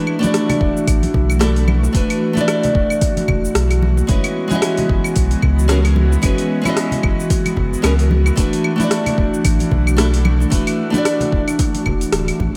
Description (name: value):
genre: sunset chillout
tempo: 112 BPM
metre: 4/4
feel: swing 58% on 16ths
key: unclear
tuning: A4 = 443 Hz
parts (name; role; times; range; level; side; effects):
- nylon-string guitar; accompaniment; 0.0-12.1 s; G#3 to D#5; -23 LUFS; equal; diffuse ambient delay
- airy breathy pad; sustained chords; 0.0-12.6 s; E3 to F#4; -23 LUFS; equal; chorus
- deep house drum kit; drums; 0.1-12.4 s; cabasa, claves, hi-hat, rim click; -26 LUFS; equal; overdrive
- congas and bongos; percussion; 0.2-12.5 s; none; -27 LUFS; equal; none
- warm sub bass; bass; 0.6-12.5 s; D1 to C#2; -19 LUFS; equal; none
- electronic kick drum; drums; 0.6-12.5 s; none; -22 LUFS; equal; overdrive
room: moderate lush hall reverb, RT60 1.7 s, digital ambience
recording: dreamy mix soaked in reverb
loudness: -16 LUFS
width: mono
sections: 0.0-12.6 A section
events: none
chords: 0.0 E9sus4; 4.1 F#9sus4; 8.4 E9sus4